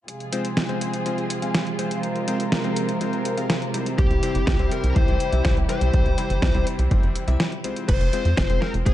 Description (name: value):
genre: italo disco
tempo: 123 BPM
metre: 4/4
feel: straight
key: F harmonic minor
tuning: A4 = 435 Hz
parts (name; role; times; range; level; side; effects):
- muted studio string section; sustained chords; 0.1-7.8 s; C3 to Bb4; -28 LUFS; right 1 dB; none
- clean 12-bit digital drum machine; drums; 0.1-8.9 s; crash cymbal, hi-hat, snare drum; -28 LUFS; right 1 dB; small room ambience
- bright electric grand piano; stabs; 0.3-8.9 s; C3 to F5; -29 LUFS; left 3 dB; low-pass filter
- high-gain lead guitar; melody; 4.0-8.9 s; G4 to C5; -28 LUFS; left 3 dB; distortion, vintage 12-bit sampler grit, ping-pong delay
- tight sequencer bass; bass; 4.0-8.9 s; F1 to F2; -22 LUFS; equal; tube saturation
- electronic kick drum; drums; 4.0-8.9 s; none; -22 LUFS; equal; small room ambience
room: light reverb, digital ambience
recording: dark, warm production, nothing above 10.3 kHz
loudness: -20 LUFS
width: side -13 dB against mid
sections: 0.1-7.9 A section; 7.9-8.9 B section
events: break 7.4-7.9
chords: 0.1 Fm; 4.0 C; 7.9 Fm